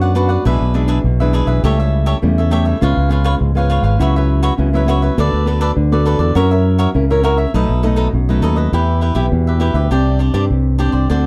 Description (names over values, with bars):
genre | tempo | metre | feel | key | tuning
samba | 102 BPM | 4/4 | straight | B minor | A4 = 440 Hz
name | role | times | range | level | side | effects
cavaquinho | accompaniment | 0.0-11.3 s | D4 to F#5 | -23 LUFS | equal | none
nylon-string guitar | accompaniment | 0.0-11.3 s | F#2 to A#4 | -21 LUFS | equal | none
fingered electric bass with an envelope filter | bass | 0.0-11.3 s | G#1 to G2 | -17 LUFS | equal | none
room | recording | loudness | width
moderate studio reverb, RT60 0.5 s | dark, warm production | -15 LUFS | mono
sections
0.0-8.7 A section; 8.7-11.3 B section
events
none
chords
0.5 E7/B; 1.6 A7/C#; 2.8 C#7; 4.0 F#7sus4/C#; 5.2 Bm7/D; 6.4 F#7; 7.5 B7; 8.7 Em; 9.9 Csus2